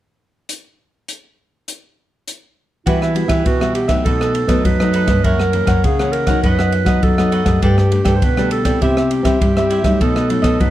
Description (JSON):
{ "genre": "samba and choro", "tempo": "101 BPM", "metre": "4/4", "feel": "straight", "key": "E minor", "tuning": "A4 = 440 Hz", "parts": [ { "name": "open jazz drum kit", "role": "drums", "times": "0.5-10.7 s", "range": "hi-hat, kick drum, ride cymbal, rim click", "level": "-19 LUFS", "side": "equal", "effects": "none" }, { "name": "warm clarinet", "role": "second line", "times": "2.9-10.7 s", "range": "E4 to C5", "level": "-20 LUFS", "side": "right 3 dB", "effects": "none" }, { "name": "cavaquinho", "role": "accompaniment", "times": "2.9-10.7 s", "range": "D4 to G5", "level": "-23 LUFS", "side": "right 1 dB", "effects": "none" }, { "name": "nylon-string guitar", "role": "accompaniment", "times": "2.9-10.7 s", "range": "F#2 to F#4", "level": "-22 LUFS", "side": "left 3 dB", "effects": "none" }, { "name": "nylon-string guitar", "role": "bass", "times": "2.9-10.7 s", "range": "F#2 to C4", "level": "-18 LUFS", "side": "equal", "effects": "none" } ], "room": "light reverb", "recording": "dark, warm production", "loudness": "-13 LUFS", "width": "side -14 dB against mid", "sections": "0.5-2.9 A section; 2.9-10.7 B section", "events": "none", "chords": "0.5 N.C.; 2.9 Emadd9; 4.1 B7; 5.2 F#7; 6.4 B/F#; 7.6 Gsus2; 8.8 C; 10.0 B7" }